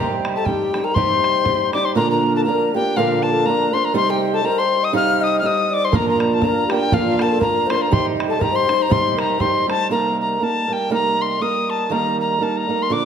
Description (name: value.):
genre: celtic folk, Celtic polka.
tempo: 121 BPM.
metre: 2/4.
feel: swing 56% on 8ths.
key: C dorian.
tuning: A4 = 440 Hz.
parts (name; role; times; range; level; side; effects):
wooden whistle; melody; 0.0-13.1 s; F5 to F6; -20 LUFS; left 3 dB; none.
mellow hollow wooden flute; second line; 0.0-9.9 s; F4 to F5; -23 LUFS; left 7 dB; none.
fingerpicked swing-style acoustic guitar; accompaniment; 0.0-13.1 s; Bb2 to C5; -20 LUFS; right 4 dB; none.
bodhran; percussion; 0.2-1.8, 5.9-9.8 s; none; -24 LUFS; right 2 dB; none.
room: wet recital hall reverb, RT60 1.5 s.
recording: none.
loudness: -16 LUFS.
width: side -8 dB against mid.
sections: 0.0-2.0 A section; 2.0-9.9 A section; 9.9-13.1 B section.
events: none.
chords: 0.0 Cm; 2.0 Bb; 3.9 Cm; 5.9 Bb; 7.9 Cm; 9.9 Cm7; 11.9 Eb.